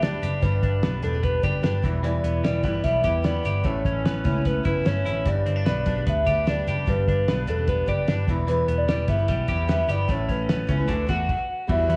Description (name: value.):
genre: jangly indie pop.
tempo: 149 BPM.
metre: 4/4.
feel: straight.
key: G major.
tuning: A4 = 440 Hz.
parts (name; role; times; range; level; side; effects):
hollow clarinet-like synth lead; melody; 0.0-12.0 s; A4 to F#5; -29 LUFS; equal; chorus.
picked steel-string acoustic guitar; accompaniment; 0.0-12.0 s; D3 to B4; -34 LUFS; equal; none.
twelve-string electric guitar; arpeggios; 0.0-12.0 s; E2 to G4; -33 LUFS; equal; none.
vintage muted picked electric bass; bass; 0.0-12.0 s; E1 to E2; -28 LUFS; equal; none.
cloth-damped thuddy drum kit; drums; 0.0-12.0 s; crash cymbal, hi-hat, kick drum, snare drum; -29 LUFS; equal; none.
warm upright piano; accompaniment; 11.7-12.0 s; G3 to F#4; -33 LUFS; equal; none.
room: light reverb.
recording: worn, warbling old tape, cassette tape, warbly pitch drift, studio reverb.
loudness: -23 LUFS.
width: mono.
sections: 0.0-11.7 A section.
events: stop 11.3-11.7.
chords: 0.0 G; 1.8 Em; 3.6 Aadd9; 5.3 G; 8.3 Em; 10.1 Aadd9; 10.9 D.